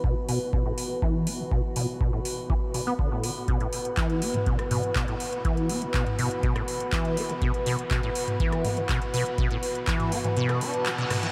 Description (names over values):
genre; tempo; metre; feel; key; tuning
acid house; 122 BPM; 4/4; straight; unclear; A4 = 441 Hz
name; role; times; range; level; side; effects
dark analog pad; sustained chords; 0.0-11.3 s; B4; -36 LUFS; equal; chorus, sidechain pumping
acid bass, saw; riff; 0.0-11.3 s; A2 to D4; -32 LUFS; equal; tube saturation, ensemble chorus, cassette tape, tape echo
electronic kick drum; drums; 0.0-10.0 s; none; -30 LUFS; equal; overdrive
warbly tape-like pad; texture; 0.0-11.3 s; F#4 to B5; -39 LUFS; equal; chorus, built-in reverb, sidechain pumping
booming analog drum machine; drums; 0.3-11.3 s; handclaps, hi-hat, rim click, toms; -34 LUFS; equal; overdrive
reverse cymbal; sound effects; 10.8-11.3 s; none; -38 LUFS; equal; none
room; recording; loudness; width
moderate huge ambient reverb, RT60 7.8 s; dreamy mix soaked in reverb; -27 LUFS; mono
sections
0.0-11.3 A section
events
filter sweep on acid bass 0.0-11.3; kick drops out 10.4-11.3; reverse cymbal 10.8-11.3; band accent 10.9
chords
0.0 B5